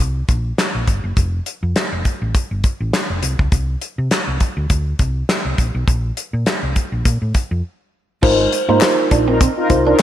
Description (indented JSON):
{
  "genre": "early-eighties boogie funk",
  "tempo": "102 BPM",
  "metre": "4/4",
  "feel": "swing 56% on 16ths",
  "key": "unclear",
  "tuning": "A4 = 439 Hz",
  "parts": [
    { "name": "hollow-body short-scale fingered electric bass", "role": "bass", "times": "0.0-9.9 s", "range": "F1 to C3", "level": "-20 LUFS", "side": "equal", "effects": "none" },
    { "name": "damped 70s drum kit", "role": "drums", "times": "0.3-10.0 s", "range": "crash cymbal, handclaps, hi-hat, kick drum, snare drum", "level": "-17 LUFS", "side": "equal", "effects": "none" },
    { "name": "mellow FM electric piano", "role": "accompaniment", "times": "8.2-10.0 s", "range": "Eb4 to C5", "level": "-15 LUFS", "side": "equal", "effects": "chorus, phaser" },
    { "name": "clean electric guitar", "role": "riff", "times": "8.2-10.0 s", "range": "Ab3 to D4", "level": "-21 LUFS", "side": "right 6 dB", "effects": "analog chorus" },
    { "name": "group handclap", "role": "percussion", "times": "8.8-10.0 s", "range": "none", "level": "-24 LUFS", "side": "left 6 dB", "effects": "none" },
    { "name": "mellow synth brass", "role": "second line", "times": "9.3-10.0 s", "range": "Eb4 to Bb4", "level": "-18 LUFS", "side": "left 1 dB", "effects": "chorus, slapback echo" }
  ],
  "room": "moderate recital hall reverb, RT60 1.6 s, studio reverb",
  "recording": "big arena sound",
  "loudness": "-16 LUFS",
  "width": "side -12 dB against mid",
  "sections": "0.0-8.2 A section; 8.2-10.0 B section",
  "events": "break 7.6-8.2",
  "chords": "0.0 Abadd9 (rootless); 1.2 F; 3.2 Csus2; 5.6 N.C.; 8.2 Ab69",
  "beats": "0.58 | 1.17 1.76 2.34 2.93 | 3.52 4.11 4.70 5.29 | 5.87 6.46 7.05 7.64 | 8.23 8.81 9.40 9.99"
}